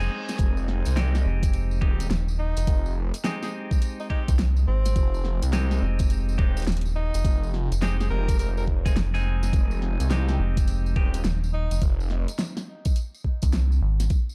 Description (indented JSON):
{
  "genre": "glitch hop",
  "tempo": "105 BPM",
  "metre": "4/4",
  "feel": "swing 64% on 16ths",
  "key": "F minor",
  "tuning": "A4 = 440 Hz",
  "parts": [
    { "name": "clean electric guitar", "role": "stabs", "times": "0.0-11.2 s", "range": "Ab3 to Ab4", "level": "-36 LUFS", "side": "equal", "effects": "sidechain pumping, dub echo" },
    { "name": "rubbery square bass", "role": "bass", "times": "0.0-14.1 s", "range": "Eb1 to C2", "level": "-26 LUFS", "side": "equal", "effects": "none" },
    { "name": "tambourine", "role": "percussion", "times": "0.0-14.3 s", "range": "none", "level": "-46 LUFS", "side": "equal", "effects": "none" },
    { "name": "pop drum kit", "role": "drums", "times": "0.3-14.2 s", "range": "hi-hat, snare drum", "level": "-34 LUFS", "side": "equal", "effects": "overdrive" },
    { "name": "phased detuned saw bass", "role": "bass", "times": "0.4-12.3 s", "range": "Eb1 to C2", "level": "-28 LUFS", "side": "equal", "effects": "phaser, overdrive" },
    { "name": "electronic kick drum", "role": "drums", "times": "0.4-14.2 s", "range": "none", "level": "-25 LUFS", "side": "equal", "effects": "overdrive" },
    { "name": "clear tenor saxophone", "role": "melody", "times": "2.4-11.8 s", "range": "C4 to Bb4", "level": "-39 LUFS", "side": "equal", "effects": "dub echo" }
  ],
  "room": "little or no reverb",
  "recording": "dark, warm production",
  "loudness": "-25 LUFS",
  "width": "mono",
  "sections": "0.0-14.3 A section",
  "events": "none",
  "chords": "0.0 Fm9"
}